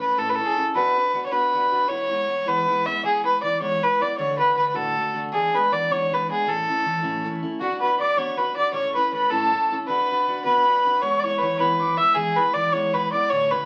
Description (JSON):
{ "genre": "celtic folk", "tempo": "105 BPM (dotted quarters)", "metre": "6/8", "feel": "straight", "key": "unclear", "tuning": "A4 = 440 Hz", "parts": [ { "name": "warm fiddle", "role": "melody", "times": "0.0-13.7 s", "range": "F#4 to E5", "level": "-23 LUFS", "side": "equal", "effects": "none" }, { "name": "picked steel-string acoustic guitar", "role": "accompaniment", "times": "0.0-13.7 s", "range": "D2 to B4", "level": "-33 LUFS", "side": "equal", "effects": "none" }, { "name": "tin whistle", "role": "second line", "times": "7.6-13.7 s", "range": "F#5 to E6", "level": "-29 LUFS", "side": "equal", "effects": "none" } ], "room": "wet small room reverb, RT60 0.5 s", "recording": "very old 78 rpm record, vinyl crackle", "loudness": "-22 LUFS", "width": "mono", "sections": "0.0-7.6 A section; 7.6-13.7 A section", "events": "none", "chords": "0.0 A; 0.7 Bm; 1.9 E; 4.2 D; 5.3 E7; 6.5 A; 7.6 Bm; 8.7 A; 9.9 Bm; 11.0 E", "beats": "0.17 | 0.75 1.32 | 1.89 2.46 | 3.03 3.61 | 4.18 4.75 | 5.32 5.89 | 6.46 7.03 | 7.60 8.17 | 8.74 9.31 | 9.88 10.45 | 11.02 11.59 | 12.16 12.72 | 13.29" }